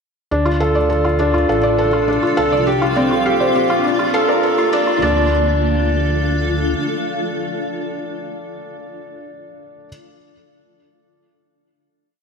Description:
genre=piano and strings electronica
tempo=102 BPM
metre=4/4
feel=straight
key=D minor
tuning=A4 = 437 Hz
part: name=granular cloud pad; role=sustained chords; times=1.4-8.1 s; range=C4 to F5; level=-22 LUFS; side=equal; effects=built-in reverb, analog chorus
part: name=analog pluck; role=arpeggios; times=0.3-5.3 s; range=D5 to F5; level=-26 LUFS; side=right 1 dB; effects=none
part: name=felt-muted upright piano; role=riff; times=0.3-9.9 s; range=C4 to D5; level=-18 LUFS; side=equal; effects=diffuse ambient delay
part: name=dark detuned saw bass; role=bass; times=0.3-6.7 s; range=A1 to D2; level=-22 LUFS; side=equal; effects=none
room=wet plate reverb, RT60 2.5 s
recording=dreamy mix soaked in reverb, high-pass filter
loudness=-15 LUFS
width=side -5 dB against mid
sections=0.3-5.0 build; 5.0-7.4 final chord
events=build-up 0.3-5.0; filter sweep on synth arpeggio sound 0.3-5.0; filter sweep 0.3-5.0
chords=0.3 Dm; 2.7 Bbmaj7; 5.0 Dm

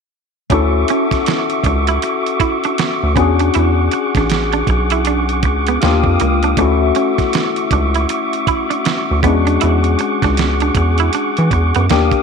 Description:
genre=R&B, neo-soul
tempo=79 BPM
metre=4/4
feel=swing 61% on 16ths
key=D lydian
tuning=A4 = 439 Hz
part: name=semi-hollow electric guitar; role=second line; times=0.5-11.9 s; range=Bb3 to E4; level=-21 LUFS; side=right 14 dB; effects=phaser
part: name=barky tine electric piano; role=accompaniment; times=0.5-12.2 s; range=G#3 to A4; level=-19 LUFS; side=left 14 dB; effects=lush chorus
part: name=tonewheel organ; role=sustained chords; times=0.5-12.2 s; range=F#4 to Eb6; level=-20 LUFS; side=right 1 dB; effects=slow rotary speaker
part: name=rubbery square bass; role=bass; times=0.5-12.1 s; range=A1 to E3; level=-16 LUFS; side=right 1 dB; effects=none
part: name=dusty soul sampler-style drum kit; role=drums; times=0.5-12.2 s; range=hi-hat, kick drum, snare drum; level=-20 LUFS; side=right 5 dB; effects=none
room=light reverb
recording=1960s-style stereo with parts hard left and right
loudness=-13 LUFS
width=side -6 dB against mid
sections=0.5-12.2 A section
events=none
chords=0.5 Dmaj9; 3.2 E13; 5.8 Ebmaj9; 6.6 Dmaj9; 9.2 E13

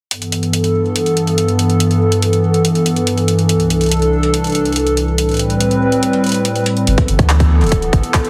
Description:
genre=IDM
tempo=142 BPM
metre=4/4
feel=straight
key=G major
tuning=A4 = 440 Hz
part: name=hollow soft pad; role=sustained chords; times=0.1-8.3 s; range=C2 to B4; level=-16 LUFS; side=equal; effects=chorus
part: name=electro analog drum machine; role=drums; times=0.1-8.3 s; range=handclaps, hi-hat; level=-24 LUFS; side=equal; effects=none
part: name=warm sub bass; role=bass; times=6.9-8.0 s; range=D1 to D2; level=-16 LUFS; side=equal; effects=none
part: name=electronic kick drum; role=drums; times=7.0-8.2 s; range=none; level=-18 LUFS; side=equal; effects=none
room=light reverb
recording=heavily compressed radio sound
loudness=-15 LUFS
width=mono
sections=0.1-8.3 A section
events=none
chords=0.1 G69; 3.5 C69; 5.2 Am9; 6.9 G69

